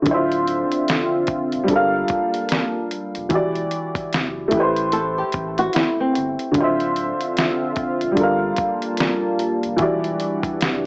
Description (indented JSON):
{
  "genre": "lo-fi hip hop",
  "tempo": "74 BPM",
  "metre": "4/4",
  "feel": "swing 62% on 16ths",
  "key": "D minor",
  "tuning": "A4 = 439 Hz",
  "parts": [
    { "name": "dark upright piano", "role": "accompaniment", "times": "0.0-10.9 s", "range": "D3 to F5", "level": "-20 LUFS", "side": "equal", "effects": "cassette tape, low-pass filter" },
    { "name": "dark analog pad", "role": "sustained chords", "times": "0.5-10.9 s", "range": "D3 to A5", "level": "-24 LUFS", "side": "equal", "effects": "chorus, low-pass filter" },
    { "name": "soft dub sub bass", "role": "bass", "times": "0.1-10.9 s", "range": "D1 to A1", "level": "-35 LUFS", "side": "equal", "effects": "none" },
    { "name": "lo-fi sampler-style drum kit", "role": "drums", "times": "0.1-10.8 s", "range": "hi-hat, kick drum, snare drum", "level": "-23 LUFS", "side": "equal", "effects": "none" },
    { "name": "flamenco guitar", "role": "second line", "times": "4.9-6.5 s", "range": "C4 to A4", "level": "-22 LUFS", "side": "equal", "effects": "low-pass filter, analog delay" }
  ],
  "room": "moderate studio reverb, RT60 0.6 s",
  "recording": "worn, warbling old tape, cassette tape, warbly pitch drift, low-pass filter, small speaker sound",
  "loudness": "-18 LUFS",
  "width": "side -30 dB against mid",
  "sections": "0.1-10.9 A section",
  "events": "none",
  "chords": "0.1 Dm9; 1.7 Gm9; 3.3 Em9; 4.5 Am9; 6.5 Dm9; 8.2 Gm9; 9.8 Em9",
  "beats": "| 0.06 0.87 1.68 2.50 | 3.31 4.12 4.93 5.74 | 6.55 7.36 8.17 8.98 | 9.79 10.60"
}